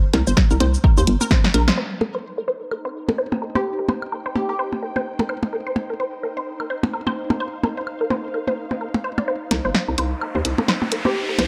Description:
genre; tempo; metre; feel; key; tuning
minimal techno; 128 BPM; 4/4; swing 58% on 16ths; C minor; A4 = 439 Hz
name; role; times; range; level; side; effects
resonant blip pluck; riff; 0.1-11.4 s; Bb4 to D5; -29 LUFS; equal; phaser, sidechain pumping, tape echo
hollow knocking FM bass; bass; 0.1-1.7, 9.5-11.5 s; G1 to Eb2; -22 LUFS; equal; sidechain pumping
punchy analog drum machine; drums; 0.1-1.8, 9.5-11.5 s; hi-hat, shaker, snare drum; -24 LUFS; equal; studio reverb
percussion blips and woodblock; percussion; 0.1-11.5 s; none; -26 LUFS; equal; overdrive, studio reverb
electronic kick drum; drums; 0.4-1.4 s; none; -18 LUFS; equal; studio reverb
ethereal airy pad; texture; 2.3-11.5 s; Eb4 to G5; -34 LUFS; equal; ensemble chorus, built-in reverb, sidechain pumping
glassy wavetable pluck; melody; 3.6-4.6, 11.1-11.3 s; G4; -29 LUFS; equal; chorus, digital delay
riser; sound effects; 10.0-11.5 s; none; -32 LUFS; equal; none
room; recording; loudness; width
light reverb; none; -22 LUFS; mono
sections
0.0-1.8 A section; 1.8-9.3 B section; 9.3-11.5 C section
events
drum fill 1.4-1.8; band accent 1.7; build-up 9.3-11.5; riser 10.0-11.5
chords
0.0 N.C.; 1.8 Cm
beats
0.37 0.84 1.31 | 1.78 2.25 2.71 3.18 | 3.65 4.12 4.59 5.06 | 5.53 6.00 6.46 6.93 | 7.40 7.87 8.34 8.81 | 9.28 9.75 10.21 10.68 | 11.15

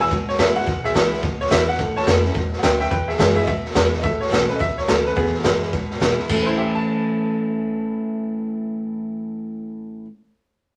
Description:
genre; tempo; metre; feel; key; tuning
rockabilly; 213 BPM; 4/4; swing 62% on 8ths; A major; A4 = 440 Hz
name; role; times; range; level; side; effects
bright upright piano; melody; 0.0-10.0 s; B3 to E6; -26 LUFS; equal; none
picked steel-string acoustic guitar; accompaniment; 0.0-10.1 s; E2 to E4; -27 LUFS; equal; none
upright bass; bass; 0.0-10.0 s; G#1 to B2; -31 LUFS; equal; none
raw garage drum kit; drums; 0.0-6.4 s; crash cymbal, hi-hat, kick drum, snare drum; -23 LUFS; equal; none
room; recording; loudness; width
moderate studio reverb, RT60 0.6 s; none; -21 LUFS; mono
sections
0.0-4.0 A section; 4.0-6.3 B section; 6.3-8.6 C section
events
none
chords
0.0 E; 1.8 A; 2.9 E; 4.0 A; 5.2 E; 6.3 A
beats
0.11 0.39 | 0.67 0.95 1.24 1.52 | 1.80 2.08 2.36 2.64 | 2.92 3.20 3.48 3.76 | 4.04 4.32 4.60 4.89 | 5.17 5.45 5.73 6.01 | 6.30 6.58 6.86 7.14 | 7.43 7.71 7.99 8.28

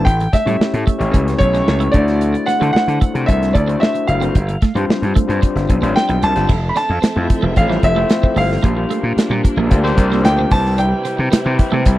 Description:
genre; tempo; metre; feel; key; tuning
polished 1980s jazz-funk pop; 112 BPM; 4/4; straight; unclear; A4 = 436 Hz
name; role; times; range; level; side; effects
clear concert grand piano; melody; 0.0-12.0 s; C#5 to B5; -20 LUFS; equal; none
overdriven tine electric piano; accompaniment; 0.0-12.0 s; G3 to C#5; -20 LUFS; left 3 dB; lush chorus
gritty slap bass; bass; 0.0-12.0 s; F1 to D3; -18 LUFS; equal; overdrive
modern studio drum kit; drums; 0.1-12.0 s; crash cymbal, hi-hat, kick drum, snare drum; -15 LUFS; equal; none
twelve-string electric guitar; riff; 0.2-11.8 s; G3 to E4; -24 LUFS; right 6 dB; lush chorus
dark studio string section; sustained chords; 6.5-12.0 s; C3 to E5; -27 LUFS; right 1 dB; none
room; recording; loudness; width
little or no reverb; dry, close 1970s-style studio recording; -13 LUFS; side -15 dB against mid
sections
0.0-6.5 A section; 6.5-12.0 B section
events
none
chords
0.1 A7; 1.9 D9; 4.3 G7sus4; 6.5 Fmaj7; 8.6 Bb69; 10.5 Cmaj7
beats
| 0.06 0.59 1.13 1.67 | 2.20 2.74 3.27 3.81 | 4.35 4.88 5.42 5.96 | 6.49 7.03 7.57 8.10 | 8.64 9.18 9.71 10.25 | 10.79 11.32 11.86

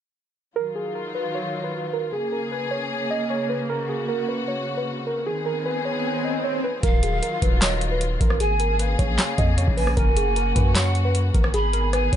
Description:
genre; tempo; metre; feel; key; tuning
hip hop, trap; 153 BPM; 4/4; half-time; Eb minor; A4 = 440 Hz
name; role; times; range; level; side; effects
muted felt-like synth keys; melody; 0.6-12.2 s; Ab4 to Eb5; -27 LUFS; right 2 dB; chorus, low-pass filter
dark studio string section; sustained chords; 0.6-12.2 s; Db3 to Ab4; -28 LUFS; left 1 dB; none
swell; sound effects; 5.0-6.8 s; none; -31 LUFS; left 2 dB; none
breathy mellow pan flute; second line; 6.8-12.2 s; Eb5 to Cb6; -28 LUFS; right 2 dB; tape echo
long sustained 808-style bass; bass; 6.8-12.2 s; Eb1 to Gb2; -23 LUFS; equal; none
booming analog drum machine; drums; 6.8-12.2 s; handclaps, hi-hat, kick drum, rim click, snare drum; -21 LUFS; equal; none
room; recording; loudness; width
digital ambience; nothing above 10.4 kHz; -21 LUFS; side -10 dB against mid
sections
0.6-6.8 A section; 6.8-12.2 B section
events
swell 5.0-6.8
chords
0.6 Ebmadd9; 2.1 Bbm7; 3.7 Gb; 5.3 Abm; 6.8 Ebmadd9; 8.4 Bbm7; 10.0 Gb; 11.5 Abm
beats
| 0.56 0.95 1.34 1.74 | 2.13 2.52 2.91 3.30 | 3.70 4.09 4.48 4.87 | 5.26 5.66 6.05 6.44 | 6.83 7.23 7.62 8.01 | 8.40 8.79 9.19 9.58 | 9.97 10.36 10.76 11.15 | 11.54 11.93

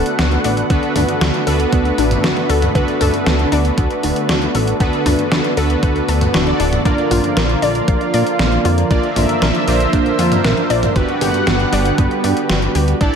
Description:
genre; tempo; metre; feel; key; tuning
synthwave; 117 BPM; 4/4; straight; D major; A4 = 439 Hz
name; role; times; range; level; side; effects
lush unison pad; sustained chords; 0.0-13.2 s; D3 to F#5; -20 LUFS; equal; chorus, sidechain pumping
analog pluck; arpeggios; 0.0-13.2 s; B3 to F5; -23 LUFS; left 4 dB; chorus, tape echo
analog synth brass; stabs; 0.0-13.2 s; Bb3 to D5; -20 LUFS; right 2 dB; chorus, tape echo
chorused synth bass; bass; 0.0-13.1 s; D1 to Bb2; -18 LUFS; equal; sidechain pumping
gated 80s digital drum machine; drums; 0.1-13.1 s; hi-hat, snare drum, toms; -20 LUFS; equal; gated reverb, gated reverb snare, overdrive
electronic kick drum; drums; 0.7-13.1 s; none; -17 LUFS; equal; overdrive
room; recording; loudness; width
light reverb, digital ambience; none; -13 LUFS; side -7 dB against mid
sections
0.0-13.2 A section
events
none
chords
0.0 D6; 6.9 Bb; 11.0 Gmaj7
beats
0.19 | 0.70 1.21 1.73 2.24 | 2.75 3.26 3.78 4.29 | 4.80 5.32 5.83 6.34 | 6.85 7.37 7.88 8.39 | 8.90 9.42 9.93 10.44 | 10.96 11.47 11.98 12.49 | 13.01

